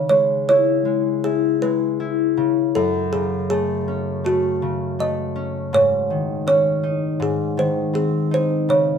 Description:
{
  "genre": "children's music, lullaby",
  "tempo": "80 BPM",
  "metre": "4/4",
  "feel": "rubato",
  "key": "C# minor",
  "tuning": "A4 = 439 Hz",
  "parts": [
    { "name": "kalimba", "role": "melody", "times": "0.0-9.0 s", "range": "F#4 to D#5", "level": "-20 LUFS", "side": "right 2 dB", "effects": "none" },
    { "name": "concert harp", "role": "accompaniment", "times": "0.0-9.0 s", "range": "F#2 to E4", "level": "-21 LUFS", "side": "left 4 dB", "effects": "none" }
  ],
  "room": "moderate studio reverb, RT60 1.0 s",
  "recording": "band playing live in one room",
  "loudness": "-18 LUFS",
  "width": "side -7 dB against mid",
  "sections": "0.0-9.0 A section",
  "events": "none",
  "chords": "0.0 C#m; 2.7 F#madd9; 5.7 G#sus4; 7.2 G#"
}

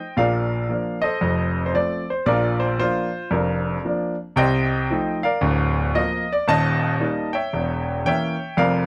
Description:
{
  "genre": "jazz, stride piano",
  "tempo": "114 BPM",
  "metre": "4/4",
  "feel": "swing 62% on 8ths",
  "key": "Bb major",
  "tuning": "A4 = 440 Hz",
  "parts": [
    { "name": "clear grand piano", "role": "solo", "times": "0.0-8.9 s", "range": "D1 to A5", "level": "-22 LUFS", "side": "equal", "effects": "none" }
  ],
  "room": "light reverb",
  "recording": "close, detailed microphones",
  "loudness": "-22 LUFS",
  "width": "mono",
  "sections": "0.0-8.9 A section",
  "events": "none",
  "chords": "0.2 Bb; 1.2 F; 2.3 Bb; 4.4 F7/C; 5.4 Bb/D; 6.5 Eb; 7.5 Edim7"
}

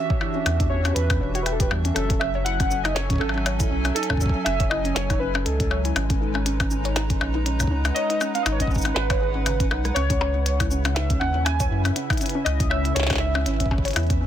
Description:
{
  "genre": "IDM",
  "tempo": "120 BPM",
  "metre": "4/4",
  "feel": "swing 56% on 16ths",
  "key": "C# minor",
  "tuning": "A4 = 441 Hz",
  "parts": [
    { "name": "warbly lo-fi synth keys", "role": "melody", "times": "0.0-13.7 s", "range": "A4 to G#5", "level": "-28 LUFS", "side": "right 1 dB", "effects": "chorus, digital delay" },
    { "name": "hollow soft pad", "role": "sustained chords", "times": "0.0-14.3 s", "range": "C#3 to A#5", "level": "-31 LUFS", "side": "equal", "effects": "chorus, sidechain pumping" },
    { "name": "warbly dusty pluck", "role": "arpeggios", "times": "0.0-14.3 s", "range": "C#3 to C#5", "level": "-30 LUFS", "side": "left 1 dB", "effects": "chorus, tape echo" },
    { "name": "electronic kick drum", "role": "drums", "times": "0.1-14.2 s", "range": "none", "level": "-25 LUFS", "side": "equal", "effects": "small room ambience" },
    { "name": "glitchy drum kit", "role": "drums", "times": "0.2-14.2 s", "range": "cabasa, hi-hat, percussion blips, rim click, snare drum", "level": "-27 LUFS", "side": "left 3 dB", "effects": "small room ambience" },
    { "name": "warm sub bass", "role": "bass", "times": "0.5-14.3 s", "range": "E1 to F#2", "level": "-25 LUFS", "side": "equal", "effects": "tube saturation" }
  ],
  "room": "little or no reverb",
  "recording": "dense, heavily limited modern master",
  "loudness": "-20 LUFS",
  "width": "side -10 dB against mid",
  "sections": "0.0-14.3 A section",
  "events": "drum fill 9.6-10.0",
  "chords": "0.0 Em7; 2.0 F#m7; 6.0 G#m7; 10.0 C#m7"
}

